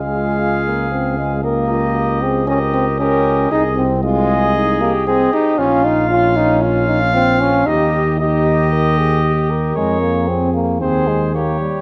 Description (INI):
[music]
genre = classical, brass quintet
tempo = 115 BPM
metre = 4/4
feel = straight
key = Ab major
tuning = A4 = 440 Hz
[part]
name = mellow trumpet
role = melody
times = 0.0-11.8 s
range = C5 to F5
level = -24 LUFS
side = equal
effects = none
[part]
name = warm flugelhorn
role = second line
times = 0.0-11.8 s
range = F4 to Ab4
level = -27 LUFS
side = equal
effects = none
[part]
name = mellow French horn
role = accompaniment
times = 0.0-11.8 s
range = Db4 to Bb4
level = -25 LUFS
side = equal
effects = none
[part]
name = warm euphonium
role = accompaniment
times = 0.0-11.8 s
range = G3 to F4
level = -20 LUFS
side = equal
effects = none
[part]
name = dark tuba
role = bass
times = 0.0-11.8 s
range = Bb1 to F2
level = -22 LUFS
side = equal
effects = none
[sound]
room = moderate concert hall reverb, RT60 1.8 s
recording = none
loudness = -16 LUFS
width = mono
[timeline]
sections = 0.0-11.8 A section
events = none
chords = 0.0 Db; 1.4 Eb7/Db; 3.5 Ab/C; 5.6 Bbm; 7.7 Eb; 9.8 Db/F; 10.8 Ab/Eb